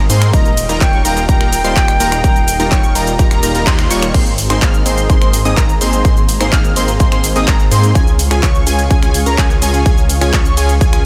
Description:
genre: EDM, festival progressive house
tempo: 126 BPM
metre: 4/4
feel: straight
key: Ab major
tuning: A4 = 440 Hz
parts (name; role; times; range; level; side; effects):
- lush unison pad; sustained chords; 0.0-11.1 s; Ab3 to Db6; -29 LUFS; equal; none
- detuned saw bass; bass; 0.0-11.0 s; Eb1 to Ab2; -19 LUFS; equal; chorus, sidechain pumping
- plucky unison lead; arpeggios; 0.1-11.0 s; G5 to F6; -24 LUFS; equal; ensemble chorus, sidechain pumping, delay
- supersaw stab; riff; 0.1-11.0 s; G3 to F5; -22 LUFS; equal; sidechain pumping, delay
- big-room dance drum kit; drums; 0.1-11.0 s; crash cymbal, finger snaps, handclaps, hi-hat, ride cymbal, shaker; -22 LUFS; equal; overdrive, studio ambience
- mellow silver concert flute; melody; 0.3-3.6 s; Eb5 to G5; -21 LUFS; equal; delay
- electronic kick drum; drums; 0.3-10.9 s; none; -15 LUFS; equal; overdrive, studio ambience
room: digital ambience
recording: none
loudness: -13 LUFS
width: mono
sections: 0.0-4.1 A section; 4.1-11.1 A section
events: drop 0.0-4.1, 4.1-11.1; band accent 3.7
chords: 0.3 Ebadd9; 4.1 Abadd9; 8.0 Db

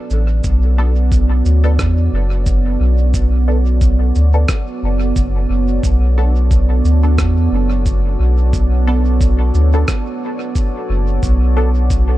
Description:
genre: ambient dub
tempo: 89 BPM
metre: 4/4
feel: swing 55% on 16ths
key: B minor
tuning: A4 = 440 Hz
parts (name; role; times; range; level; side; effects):
- deep dark ambient pad; sustained chords; 0.0-12.2 s; B3 to D5; -22 LUFS; right 4 dB; chorus, built-in reverb
- drifting glass-harmonics texture; texture; 0.0-0.5 s; D4; -41 LUFS; right 1 dB; none
- soft dub sub bass; bass; 0.1-12.2 s; F#1 to E2; -13 LUFS; equal; none
- electronic cabasa and rim click; drums; 0.1-12.1 s; none; -27 LUFS; right 1 dB; dub echo
- electronic kick drum; drums; 0.4-12.1 s; none; -16 LUFS; equal; none
- filtered dub chord stab; stabs; 0.8-11.7 s; B3 to A4; -28 LUFS; left 2 dB; phaser, ensemble chorus, dub echo
room: digital ambience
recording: dark, warm production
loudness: -12 LUFS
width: side -16 dB against mid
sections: 0.4-12.2 A section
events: none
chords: 0.4 Bm7

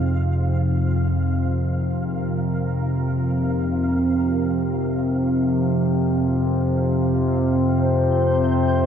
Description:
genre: dark ambient drone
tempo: free time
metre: none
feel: none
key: F minor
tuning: A4 = 440 Hz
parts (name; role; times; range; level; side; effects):
- deep dark ambient pad; sustained chords; 0.0-8.9 s; C4 to Bb4; -28 LUFS; right 1 dB; chorus, built-in reverb
- analog drone; drone; 0.0-8.9 s; F2 to C3; -19 LUFS; equal; chorus
- flickering grainy texture; texture; 0.0-8.9 s; F5 to G6; -38 LUFS; right 1 dB; built-in reverb
- mellow horn-like synth lead; melody; 7.8-8.9 s; C5; -22 LUFS; left 3 dB; chorus, tremolo, ping-pong delay
room: wet huge ambient reverb, RT60 8.1 s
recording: dark, warm production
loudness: -19 LUFS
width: side -8 dB against mid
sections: 0.0-8.9 A section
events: none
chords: 0.0 Fm; 7.8 C5

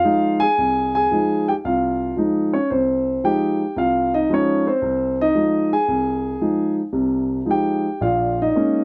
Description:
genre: solo jazz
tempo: 113 BPM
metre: 4/4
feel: swing 69% on 8ths, rubato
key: F minor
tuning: A4 = 440 Hz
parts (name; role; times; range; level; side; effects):
- dark baby grand piano; solo; 0.0-8.8 s; Bb1 to Ab5; -20 LUFS; equal; none
room: light reverb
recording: none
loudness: -20 LUFS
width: mono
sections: 0.0-8.8 A section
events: none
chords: 0.0 Fm7; 8.0 Bbm7

